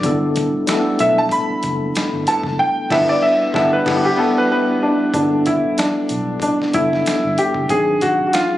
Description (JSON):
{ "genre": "R&B, neo-soul", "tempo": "94 BPM", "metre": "4/4", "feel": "swing 57% on 16ths", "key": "G major", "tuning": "A4 = 440 Hz", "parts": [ { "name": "clear concert grand piano", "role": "melody", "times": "0.0-8.6 s", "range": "B3 to B5", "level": "-17 LUFS", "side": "equal", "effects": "none" }, { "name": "tine electric piano", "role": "accompaniment", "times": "0.0-8.6 s", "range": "Gb3 to B4", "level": "-20 LUFS", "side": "left 1 dB", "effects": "medium stereo tremolo" }, { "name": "vintage muted fingered electric bass", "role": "bass", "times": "0.0-8.2 s", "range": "F#1 to B1", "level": "-27 LUFS", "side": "equal", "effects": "none" }, { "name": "dusty soul sampler-style drum kit", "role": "drums", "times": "0.0-8.5 s", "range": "crash cymbal, hi-hat, kick drum, snare drum", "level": "-25 LUFS", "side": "equal", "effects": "none" }, { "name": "vintage hollow-body jazz guitar", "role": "second line", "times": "1.0-4.1 s", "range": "E4 to B4", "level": "-28 LUFS", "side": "right 1 dB", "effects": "none" } ], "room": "moderate echo chamber reverb, RT60 2.0 s, digital ambience", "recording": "recorded on a phone in the room, club reverb, compression", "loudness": "-15 LUFS", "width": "side -14 dB against mid", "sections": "0.0-5.1 A section; 5.1-8.6 B section", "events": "grand piano solo 0.0-5.1; band accent 2.6-5.1", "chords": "0.0 G69; 7.7 Ab7#11" }